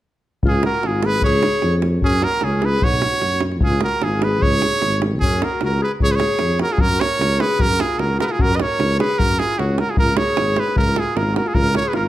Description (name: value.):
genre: balkan folk, Balkan brass band.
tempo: 151 BPM.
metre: 2/4.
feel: swing 53% on 16ths.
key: Db mixolydian.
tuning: A4 = 440 Hz.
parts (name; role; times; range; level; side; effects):
dark tuba; bass; 0.4-12.1 s; Ab1 to Gb2; -21 LUFS; equal; none.
davul; percussion; 0.4-12.0 s; none; -22 LUFS; equal; none.
bright trumpet; melody; 0.5-12.1 s; Gb4 to Eb5; -20 LUFS; right 3 dB; none.
breathy alto saxophone; second line; 0.5-12.1 s; Db4 to Cb5; -25 LUFS; left 4 dB; none.
room: moderate recital hall reverb, RT60 1.5 s.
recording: none.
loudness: -16 LUFS.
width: side -14 dB against mid.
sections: 0.4-6.8 A section; 6.8-12.1 B section.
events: none.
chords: 0.4 Db; 2.0 Gb5; 2.8 Cb5; 3.6 Db5; 5.2 Gb5; 6.0 Db; 6.8 Gb; 10.0 Db5.